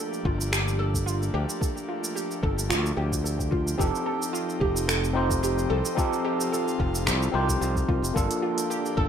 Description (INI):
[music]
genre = sunset chillout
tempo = 110 BPM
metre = 4/4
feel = swing 53% on 16ths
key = G minor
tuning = A4 = 439 Hz
[part]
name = airy breathy pad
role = sustained chords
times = 0.0-9.1 s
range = F3 to G4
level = -34 LUFS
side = left 1 dB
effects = chorus, plate reverb
[part]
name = soft round pluck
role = arpeggios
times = 0.0-9.1 s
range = F4 to A4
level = -31 LUFS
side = right 2 dB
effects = analog chorus, tape echo, plate reverb
[part]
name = smooth R&B drum kit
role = drums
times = 0.1-9.0 s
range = finger snaps, hi-hat, shaker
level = -31 LUFS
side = right 1 dB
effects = none
[part]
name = modern bright fingered electric bass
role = bass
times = 0.3-9.1 s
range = F1 to D2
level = -27 LUFS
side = equal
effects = tube saturation
[part]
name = electronic kick drum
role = drums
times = 0.3-9.1 s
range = none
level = -28 LUFS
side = equal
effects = none
[part]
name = overdriven tine electric piano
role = accompaniment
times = 3.8-9.1 s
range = Bb3 to C5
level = -28 LUFS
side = equal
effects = auto-pan, tape echo, plate reverb
[sound]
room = wet studio reverb, RT60 0.7 s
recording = rough home demo mix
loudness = -24 LUFS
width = side -8 dB against mid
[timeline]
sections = 0.0-9.1 A section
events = none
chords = 0.0 Gm9; 3.8 F9; 8.2 Gm9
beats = 0.52 1.06 | 1.61 2.16 2.70 3.25 | 3.79 4.34 4.88 5.43 | 5.97 6.52 7.07 7.61 | 8.16 8.70